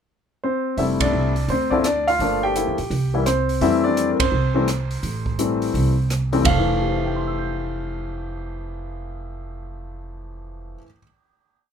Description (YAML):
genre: jazz piano trio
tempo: 169 BPM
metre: 4/4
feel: swing 65% on 8ths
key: F major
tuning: A4 = 440 Hz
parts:
  - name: clear concert grand piano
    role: melody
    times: 0.4-11.0 s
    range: F2 to G6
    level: -21 LUFS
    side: left 2 dB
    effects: none
  - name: upright bass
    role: bass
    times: 0.8-10.7 s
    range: F1 to F2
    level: -25 LUFS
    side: right 2 dB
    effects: none
  - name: open jazz drum kit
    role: drums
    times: 0.8-6.6 s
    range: hi-hat, kick drum, ride cymbal, rim click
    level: -27 LUFS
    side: right 3 dB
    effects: none
room: light reverb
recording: minimal, uncompressed stereo recording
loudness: -19 LUFS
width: side -7 dB against mid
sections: 0.0-0.8 pickup bar; 0.8-6.5 A section; 6.5-9.3 final chord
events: band accent 1.0, 4.1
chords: 0.0 N.C.; 0.8 Fmaj7; 1.5 Dm7; 2.2 Gm7; 2.9 C; 3.6 Fmaj7